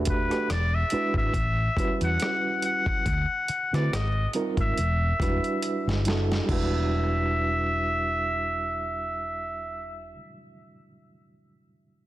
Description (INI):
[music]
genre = R&B, neo-soul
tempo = 70 BPM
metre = 4/4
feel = swing 55% on 16ths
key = E dorian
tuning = A4 = 441 Hz
[part]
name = overdriven reed electric piano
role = accompaniment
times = 0.0-12.1 s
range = G3 to E5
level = -30 LUFS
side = right 3 dB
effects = fast tremolo
[part]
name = hollow-body short-scale fingered electric bass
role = bass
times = 0.0-10.2 s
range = E1 to D3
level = -28 LUFS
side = equal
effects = none
[part]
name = trumpet with straight mute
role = melody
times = 0.1-10.2 s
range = B4 to F#5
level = -28 LUFS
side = left 1 dB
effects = tape echo
[part]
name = dusty soul sampler-style drum kit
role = drums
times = 0.1-6.7 s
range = crash cymbal, hi-hat, kick drum, rim click, snare drum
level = -30 LUFS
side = equal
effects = overdrive
[sound]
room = digital ambience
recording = dense, heavily limited modern master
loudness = -24 LUFS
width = side -15 dB against mid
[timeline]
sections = 0.0-6.5 A section; 6.5-9.9 B section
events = drum fill 5.6-6.5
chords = 0.5 E9; 1.3 A13; 3.1 D13; 3.9 G#maj13; 4.8 Em7